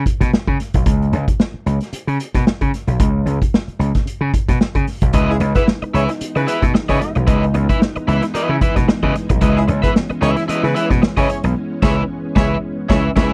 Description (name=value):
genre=funk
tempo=112 BPM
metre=4/4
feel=swing 56% on 16ths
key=unclear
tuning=A4 = 440 Hz
part: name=gritty slap bass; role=bass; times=0.0-13.3 s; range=B1 to C#3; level=-20 LUFS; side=equal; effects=overdrive
part: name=vintage drum kit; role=drums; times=0.1-13.3 s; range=crash cymbal, hi-hat, kick drum, snare drum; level=-20 LUFS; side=equal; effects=none
part: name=crunchy overdriven guitar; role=accompaniment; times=5.1-13.3 s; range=E4 to E5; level=-23 LUFS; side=equal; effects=none
part: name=soft string machine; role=sustained chords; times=5.1-13.3 s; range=E3 to D#4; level=-28 LUFS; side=equal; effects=ensemble chorus
part: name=clear horn section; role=second line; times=5.3-13.3 s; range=G#3 to C#5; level=-24 LUFS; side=equal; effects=none
room=little or no reverb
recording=none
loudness=-17 LUFS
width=mono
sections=0.0-13.3 A section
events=band accent 11.6-13.3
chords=0.0 C#m9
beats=0.32 | 0.86 1.39 1.93 2.46 | 3.00 3.53 4.07 4.60 | 5.14 5.67 6.21 6.74 | 7.28 7.81 8.35 8.88 | 9.41 9.95 10.48 11.02 | 11.56 12.09 12.63 13.16